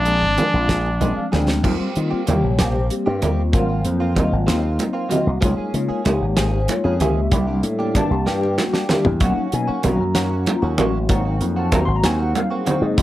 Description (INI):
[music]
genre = electric jazz fusion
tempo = 64 BPM (dotted quarters)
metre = 6/8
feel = straight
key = unclear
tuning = A4 = 440 Hz
[part]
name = brilliant trumpet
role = melody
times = 0.0-1.3 s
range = D4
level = -20 LUFS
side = equal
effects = slapback echo
[part]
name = tine electric piano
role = accompaniment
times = 0.0-13.0 s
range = C3 to C6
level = -23 LUFS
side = left 3 dB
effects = medium tremolo, ensemble chorus, plate reverb
[part]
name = slap bass with an envelope filter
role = bass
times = 0.0-13.0 s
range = Ab1 to Eb3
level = -20 LUFS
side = equal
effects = none
[part]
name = direct-recorded clean electric guitar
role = stabs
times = 0.1-13.0 s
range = D#3 to Ab4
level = -28 LUFS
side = right 3 dB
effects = analog chorus, slapback echo, plate reverb
[part]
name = damped 70s drum kit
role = drums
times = 0.1-13.0 s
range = crash cymbal, hi-hat, kick drum, snare drum, toms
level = -22 LUFS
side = equal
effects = none
[part]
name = congas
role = percussion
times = 0.4-13.0 s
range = none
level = -24 LUFS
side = right 3 dB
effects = none
[sound]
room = light reverb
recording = none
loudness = -17 LUFS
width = side -14 dB against mid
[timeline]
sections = 0.0-1.6 A section; 1.6-13.0 B section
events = tine electric piano fill 0.7-1.6; drum fill 1.3-1.6, 8.3-9.2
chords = 0.0 Bb7; 1.6 Eb69; 3.5 Ab13; 5.4 Db6; 7.3 C9; 9.2 Bmaj9; 11.1 Ab9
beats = 0.69 | 1.64 2.59 | 3.54 4.49 | 5.43 6.38 | 7.32 8.27 | 9.21 10.16 | 11.10 12.04 | 12.98